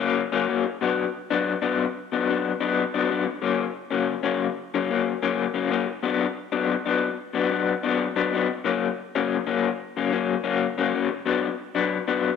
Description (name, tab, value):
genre	rock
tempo	92 BPM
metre	4/4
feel	straight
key	unclear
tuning	A4 = 442 Hz
part	electric guitar through a small old amp	solo	0.0-12.3 s	B2 to D4	-22 LUFS	left 7 dB	tremolo, slapback echo
room	moderate echo chamber reverb, RT60 1.6 s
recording	none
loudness	-22 LUFS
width	side -6 dB against mid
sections	0.0-12.4 A section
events	none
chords	0.0 F#; 0.8 Bm; 3.4 F#; 6.1 Bm; 8.7 F#; 11.3 Bm